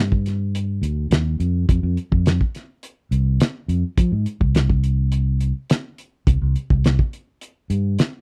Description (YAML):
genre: straight-eighth soul blues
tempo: 105 BPM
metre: 4/4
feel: straight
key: unclear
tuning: A4 = 445 Hz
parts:
  - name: fingered electric bass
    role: bass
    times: 0.0-8.0 s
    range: C2 to F3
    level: -22 LUFS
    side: equal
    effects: none
  - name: cloth-damped thuddy drum kit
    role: drums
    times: 0.1-8.1 s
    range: hi-hat, kick drum, snare drum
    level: -21 LUFS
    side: equal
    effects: none
room: little or no reverb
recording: dry, close 1970s-style studio recording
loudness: -21 LUFS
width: mono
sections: 0.0-8.2 A section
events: none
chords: none